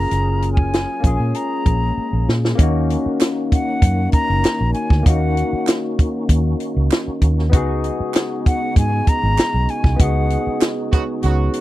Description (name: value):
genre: lush 1970s-style soul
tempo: 97 BPM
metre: 4/4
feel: straight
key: Eb minor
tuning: A4 = 440 Hz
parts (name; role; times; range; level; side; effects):
- hollow concert flute; melody; 0.0-10.6 s; Gb5 to Bb5; -23 LUFS; left 1 dB; none
- barky tine electric piano; accompaniment; 0.0-11.6 s; Bb3 to Ab4; -23 LUFS; left 3 dB; lush chorus
- percussive tonewheel organ; sustained chords; 0.0-11.6 s; Db3 to Bb4; -30 LUFS; right 3 dB; slow rotary speaker, chorus vibrato
- vintage muted fingered electric bass; bass; 0.0-11.5 s; Gb1 to Bb2; -18 LUFS; equal; none
- compact cocktail drum kit; drums; 0.1-11.6 s; hi-hat, kick drum, snare drum; -16 LUFS; equal; none
- group handclap; percussion; 3.2-10.8 s; none; -30 LUFS; right 17 dB; none
- warm horn section; stabs; 10.9-11.6 s; Db3 to Gb4; -24 LUFS; right 6 dB; none
room: little or no reverb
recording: dry, close 1970s-style studio recording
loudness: -16 LUFS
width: side -16 dB against mid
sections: 0.0-2.6 A section; 2.6-11.6 B section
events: drum fill 2.0-2.6; band accent 10.0-11.6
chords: 0.0 Gbmaj9; 1.0 Bbm7; 2.6 Ebm7; 7.5 Db7sus4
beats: | 0.11 0.73 1.35 1.97 | 2.59 3.21 3.83 4.44 | 5.06 5.68 6.30 6.91 | 7.53 8.15 8.77 9.38 | 10.00 10.62 11.23